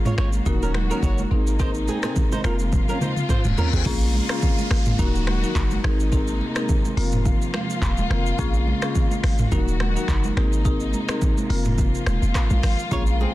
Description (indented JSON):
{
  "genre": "afrobeats",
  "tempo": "106 BPM",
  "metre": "4/4",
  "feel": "swing 55% on 16ths",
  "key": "Bb minor",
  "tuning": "A4 = 441 Hz",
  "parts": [
    { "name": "warm studio string section", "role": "sustained chords", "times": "0.0-13.3 s", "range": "C3 to Gb4", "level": "-29 LUFS", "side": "equal", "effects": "none" },
    { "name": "flamenco guitar", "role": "riff", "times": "0.1-3.8, 12.9-13.3 s", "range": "C4 to Db5", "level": "-30 LUFS", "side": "right 4 dB", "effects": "tape echo" },
    { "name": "afro-pop drum kit", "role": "drums", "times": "0.1-13.2 s", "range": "crash cymbal, finger snaps, handclaps, hi-hat, kick drum, rim click, shaker, toms", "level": "-23 LUFS", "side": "equal", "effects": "soft clipping on snare" },
    { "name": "congas", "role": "percussion", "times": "0.1-13.3 s", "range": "none", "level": "-32 LUFS", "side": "right 3 dB", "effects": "none" },
    { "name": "warm 808-style bass", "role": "bass", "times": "0.2-13.3 s", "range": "Eb1 to Bb1", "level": "-22 LUFS", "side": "equal", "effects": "none" },
    { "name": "marimba with medium mallets", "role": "accompaniment", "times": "0.5-13.1 s", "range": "Bb3 to Bb4", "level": "-28 LUFS", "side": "left 4 dB", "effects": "none" },
    { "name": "reverse cymbal and downlifter", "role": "sound effects", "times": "3.2-8.4 s", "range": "none", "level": "-35 LUFS", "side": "left 2 dB", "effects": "none" }
  ],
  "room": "small room ambience",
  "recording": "dense, heavily limited modern master",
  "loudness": "-19 LUFS",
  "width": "side -16 dB against mid",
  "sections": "0.0-3.9 A section; 3.9-13.3 B section",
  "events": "drum fill 2.7-3.9; reverse cymbal 3.2-3.9",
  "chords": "0.5 Ebm; 1.3 Abadd9; 2.4 Fsus4; 3.9 Bbm7; 5.0 Ebm; 5.8 Abadd9; 7.0 Fsus4; 8.4 Bbm7; 9.5 Ebm; 10.4 Abadd9; 11.5 Fsus4"
}